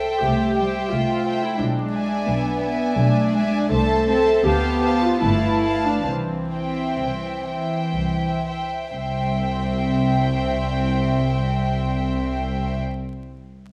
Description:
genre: classical, slow romantic movement for string orchestra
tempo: 59-89 BPM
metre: 3/4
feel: rubato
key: C major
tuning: A4 = 440 Hz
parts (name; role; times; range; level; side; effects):
- dark studio violin section; melody; 0.0-12.8 s; G5 to A5; -30 LUFS; equal; none
- warm studio violin section; second line; 0.0-12.8 s; B4 to F5; -32 LUFS; equal; none
- warm studio viola section; accompaniment; 0.0-12.8 s; C4 to A4; -27 LUFS; equal; none
- warm studio double bass section; bass; 0.0-12.8 s; G1 to D2; -27 LUFS; equal; none
- warm studio cello section; bass; 0.2-12.8 s; C2 to C4; -28 LUFS; equal; none
room: moderate scoring stage reverb, RT60 1.5 s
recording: vinyl crackle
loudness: -22 LUFS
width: mono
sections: 0.0-8.9 A section; 8.9-13.7 B section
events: slowing down 2.6-8.9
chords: 0.0 C; 1.6 E7/B; 3.7 Am/C; 4.5 Dm7; 5.2 G9; 6.1 C

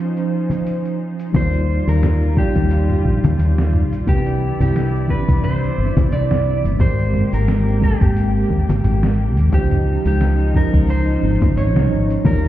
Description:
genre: sunset chillout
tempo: 88 BPM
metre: 4/4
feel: swing 55% on 16ths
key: unclear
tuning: A4 = 436 Hz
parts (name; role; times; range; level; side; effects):
- electric guitar at the edge of break-up; melody; 0.0-12.5 s; F4 to D5; -26 LUFS; right 1 dB; tape echo
- mellow tine electric piano; accompaniment; 0.0-12.5 s; E3 to Eb5; -23 LUFS; right 1 dB; medium stereo tremolo, auto-pan, vintage 12-bit sampler grit, digital delay
- bright symphonic string section; sustained chords; 0.0-12.5 s; F3 to D5; -28 LUFS; equal; none
- dusty soul sampler-style drum kit; drums; 0.2-12.5 s; hi-hat, shaker, snare drum, toms; -23 LUFS; equal; overdrive
- congas; percussion; 0.5-12.4 s; none; -21 LUFS; left 3 dB; none
- woody fretless electric bass; bass; 1.3-12.5 s; G1 to Eb2; -17 LUFS; equal; none
- electronic kick drum; drums; 1.3-12.4 s; none; -19 LUFS; equal; none
room: light reverb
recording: heard muffled through a wall, stone room reverb, EQ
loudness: -15 LUFS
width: side -13 dB against mid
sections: 0.0-1.3 A section; 1.3-12.5 B section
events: none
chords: 0.0 Dbmaj9; 1.3 Ebmaj9; 4.1 Cmaj9; 6.8 Abmaj9; 9.5 Dbmaj9

